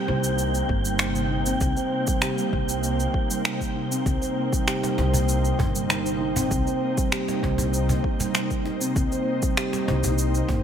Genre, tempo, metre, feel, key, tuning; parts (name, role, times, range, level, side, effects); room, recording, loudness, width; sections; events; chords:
organic downtempo; 98 BPM; 4/4; straight; C minor; A4 = 439 Hz
ethereal airy pad; sustained chords; 0.0-10.6 s; C3 to C5; -29 LUFS; left 2 dB; ensemble chorus, built-in reverb, vintage 12-bit sampler grit, sidechain pumping
steel tongue drum; arpeggios; 0.0-10.6 s; G3 to C5; -27 LUFS; right 3 dB; tape echo
wind-like tuned noise texture; texture; 0.0-10.6 s; G5; -34 LUFS; right 3 dB; built-in reverb
upright bass; bass; 0.1-10.6 s; G1 to C2; -26 LUFS; left 1 dB; sidechain pumping
electronic cabasa and finger snaps; drums; 0.2-10.5 s; -28 LUFS; equal
electronic kick drum; drums; 0.7-10.6 s; -27 LUFS; left 1 dB; overdrive
cajon; percussion; 4.8-10.6 s; -32 LUFS; equal
moderate echo chamber reverb, RT60 2.1 s; -22 LUFS; side -8 dB against mid
0.0-10.6 A section
0.0 Cm7